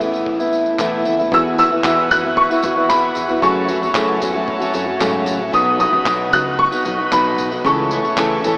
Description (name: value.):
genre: acoustic pop.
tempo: 114 BPM.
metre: 4/4.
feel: straight.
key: unclear.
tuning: A4 = 440 Hz.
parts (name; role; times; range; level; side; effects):
warm upright piano; melody; 0.0-8.6 s; E4 to F#6; -17 LUFS; equal; none.
fingerpicked steel-string acoustic guitar; accompaniment; 0.0-8.6 s; E2 to A4; -18 LUFS; equal; none.
upright bass; bass; 0.0-8.6 s; F#1 to G#2; -29 LUFS; equal; none.
tambourine; percussion; 0.0-8.6 s; none; -34 LUFS; right 1 dB; none.
dusty soul sampler-style drum kit; drums; 0.3-8.6 s; handclaps, kick drum, tambourine; -26 LUFS; equal; none.
bright tonewheel organ; sustained chords; 1.3-8.6 s; E4 to C#6; -26 LUFS; equal; slow rotary speaker.
room: wet huge ambient reverb, RT60 7.6 s.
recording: dreamy mix soaked in reverb, AM radio sound.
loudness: -14 LUFS.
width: side -26 dB against mid.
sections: 0.0-1.3 A section; 1.3-8.6 B section.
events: none.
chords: 0.0 Asus2; 1.3 Esus2; 3.4 F#m; 5.5 B; 7.6 A.